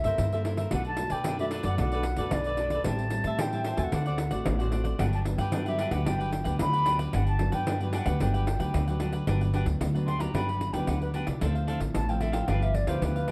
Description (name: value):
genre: samba and choro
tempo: 112 BPM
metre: 4/4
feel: straight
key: G major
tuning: A4 = 440 Hz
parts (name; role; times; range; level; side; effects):
- mellow wooden flute; melody; 0.0-13.3 s; B4 to C6; -34 LUFS; equal; none
- cavaquinho; accompaniment; 0.0-13.3 s; D4 to A5; -39 LUFS; equal; none
- nylon-string guitar; accompaniment; 0.0-13.3 s; F#2 to A4; -37 LUFS; equal; none
- upright bass; bass; 0.0-13.3 s; G1 to B2; -31 LUFS; equal; none
- pandeiro; percussion; 0.0-13.3 s; none; -36 LUFS; equal; none
room: light reverb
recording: dark, warm production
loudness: -28 LUFS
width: mono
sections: 0.0-9.3 A section; 9.3-13.3 B section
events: flute solo 9.3-13.3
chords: 0.0 C6; 0.7 Bm7; 2.9 Am7; 3.9 D7; 5.0 Gmaj7; 11.4 Dm9; 12.5 G6